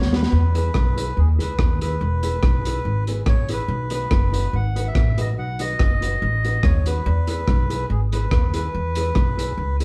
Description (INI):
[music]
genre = ska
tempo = 143 BPM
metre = 4/4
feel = swing 54% on 8ths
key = E major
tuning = A4 = 439 Hz
[part]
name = melodica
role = melody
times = 0.0-9.8 s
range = G#4 to F#5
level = -30 LUFS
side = equal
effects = none
[part]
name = upright bass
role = bass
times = 0.0-9.8 s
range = E1 to E2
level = -24 LUFS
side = equal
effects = none
[part]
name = crunchy breakbeat drum kit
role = drums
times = 0.0-9.8 s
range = hi-hat, kick drum, rim click, snare drum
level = -24 LUFS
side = equal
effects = none
[part]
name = mellow electric guitar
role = accompaniment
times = 0.1-9.8 s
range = D#4 to B4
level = -35 LUFS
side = equal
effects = spring reverb
[sound]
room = moderate studio reverb, RT60 0.9 s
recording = band playing live in one room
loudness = -21 LUFS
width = mono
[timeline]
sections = 0.0-9.8 A section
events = drum fill 0.0-0.3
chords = 0.3 E; 3.7 B; 7.1 E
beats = | 0.33 0.75 1.17 1.59 | 2.01 2.43 2.85 3.27 | 3.69 4.11 4.53 4.95 | 5.37 5.79 6.21 6.63 | 7.05 7.47 7.89 8.31 | 8.73 9.15 9.57